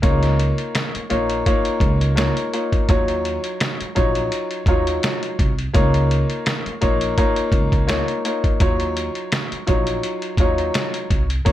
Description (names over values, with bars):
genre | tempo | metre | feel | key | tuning
hip hop, boom-bap hip-hop | 84 BPM | 4/4 | swing 55% on 16ths | Eb minor | A4 = 440 Hz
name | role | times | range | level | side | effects
warm upright piano | accompaniment | 0.0-11.5 s | Gb3 to Db5 | -22 LUFS | left 1 dB | high-pass filter, low-pass filter
upright bass | bass | 0.0-11.5 s | Bb1 to Eb2 | -21 LUFS | right 1 dB | none
trip hop sampler-style drum kit | drums | 0.0-11.5 s | hi-hat, kick drum, snare drum | -21 LUFS | equal | none
room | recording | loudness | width
light reverb | none | -17 LUFS | side -13 dB against mid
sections
0.0-11.5 A section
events
none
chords
0.0 Db69; 2.9 Ebm9; 5.7 Db69; 8.6 Ebm9